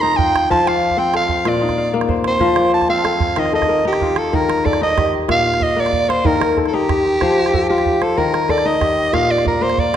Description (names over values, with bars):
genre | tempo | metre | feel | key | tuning
west african traditional, West African string and xylophone music | 125 BPM (dotted quarters) | 12/8 | straight | unclear | A4 = 440 Hz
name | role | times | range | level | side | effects
raspy soprano saxophone | melody | 0.0-10.0 s | G4 to Bb5 | -17 LUFS | right 2 dB | none
kora | arpeggios | 0.0-10.0 s | Bb2 to F5 | -18 LUFS | left 4 dB | none
calabash | percussion | 0.2-10.0 s | none | -23 LUFS | right 4 dB | none
room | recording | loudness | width
wet recital hall reverb, RT60 1.4 s | dark, warm production | -14 LUFS | side -10 dB against mid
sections
0.0-4.3 A section; 4.3-10.0 B section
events
soprano saxophone solo 0.0-4.3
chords
0.0 Eb; 0.5 F; 1.5 Bb; 2.4 F; 3.4 Eb; 5.3 Bb; 6.2 Eb; 7.2 F; 8.2 Eb; 9.1 Bb